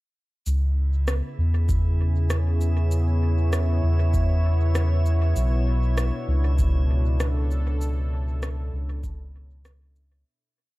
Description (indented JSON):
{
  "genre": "ambient dub",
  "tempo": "98 BPM",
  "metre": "4/4",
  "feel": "swing 55% on 16ths",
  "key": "B dorian",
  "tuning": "A4 = 439 Hz",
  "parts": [
    { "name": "warm analog pad", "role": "sustained chords", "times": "0.5-10.3 s", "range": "B2 to C#5", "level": "-31 LUFS", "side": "equal", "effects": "chorus, vintage 12-bit sampler grit" },
    { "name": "round analog bass", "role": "bass", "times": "0.5-10.2 s", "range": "B1 to E2", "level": "-21 LUFS", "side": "equal", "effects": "none" },
    { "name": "electronic cabasa and rim click", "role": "drums", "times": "0.5-10.1 s", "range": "none", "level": "-33 LUFS", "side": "equal", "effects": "overdrive, dub echo" },
    { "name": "drifting glass-harmonics texture", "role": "texture", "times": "0.9-10.3 s", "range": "E4 to E5", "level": "-38 LUFS", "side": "right 4 dB", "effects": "chorus, built-in reverb" },
    { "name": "electronic kick drum", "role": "drums", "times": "1.7-9.2 s", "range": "none", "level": "-26 LUFS", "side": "equal", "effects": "none" }
  ],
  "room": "little or no reverb",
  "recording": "dark, warm production",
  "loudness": "-21 LUFS",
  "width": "side -19 dB against mid",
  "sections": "0.5-10.3 groove",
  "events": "fade-out 7.0-10.3",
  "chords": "0.5 C#m7; 5.4 Bm9"
}